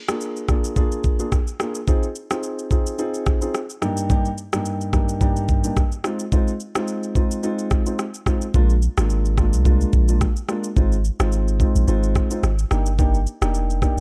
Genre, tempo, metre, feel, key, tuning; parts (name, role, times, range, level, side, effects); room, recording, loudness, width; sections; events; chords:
afrobeats; 108 BPM; 4/4; swing 55% on 16ths; Eb major; A4 = 443 Hz
dark grand piano; accompaniment; 0.1-14.0 s; G2 to Ab4; -27 LUFS; equal
afro-pop drum kit; drums; 0.1-14.0 s; kick drum, rim click, shaker; -23 LUFS; equal
punchy sub bass; bass; 8.5-14.0 s; F1 to C2; -21 LUFS; equal
digital ambience; dark, warm production; -21 LUFS; mono
0.0-14.0 A section
0.0 Bb7; 1.9 Ab6; 3.8 Ebmaj7/G; 6.0 Fm7; 8.5 Bb7; 10.8 Ab6; 12.7 Ebmaj7